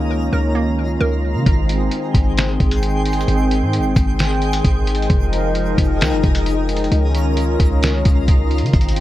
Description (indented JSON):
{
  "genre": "hip hop, atmospheric cloud-rap",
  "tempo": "132 BPM",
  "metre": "4/4",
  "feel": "half-time",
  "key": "Ab major",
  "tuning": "A4 = 440 Hz",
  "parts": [
    { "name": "warm analog pad", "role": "sustained chords", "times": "0.0-9.0 s", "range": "Eb3 to G5", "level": "-20 LUFS", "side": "left 1 dB", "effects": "lush chorus, sidechain pumping" },
    { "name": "hollow square pluck", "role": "arpeggios", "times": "0.0-1.5 s", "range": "Bb3 to Bb4", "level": "-26 LUFS", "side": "right 3 dB", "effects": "chorus, ping-pong delay" },
    { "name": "warm 808-style bass", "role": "bass", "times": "0.0-9.0 s", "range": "F1 to Db3", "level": "-19 LUFS", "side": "equal", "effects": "none" },
    { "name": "twinkling granular texture", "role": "texture", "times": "0.0-9.0 s", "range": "F4 to C6", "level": "-29 LUFS", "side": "equal", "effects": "built-in reverb" },
    { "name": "trip hop sampler-style drum kit", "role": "drums", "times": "1.5-9.0 s", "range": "hi-hat, kick drum, snare drum", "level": "-18 LUFS", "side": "equal", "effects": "none" }
  ],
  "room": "light reverb",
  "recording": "none",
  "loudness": "-15 LUFS",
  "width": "side -14 dB against mid",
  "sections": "0.0-1.5 A section; 1.5-9.0 B section",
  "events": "filter sweep 0.0-1.5",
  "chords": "0.0 Db69; 1.5 Abmaj7; 5.1 Fm11; 6.9 Db69",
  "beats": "0.10 0.55 1.01 | 1.46 1.92 2.37 2.83 | 3.28 3.73 4.19 4.64 | 5.10 5.55 6.01 6.46 | 6.92 7.37 7.83 8.28 | 8.73"
}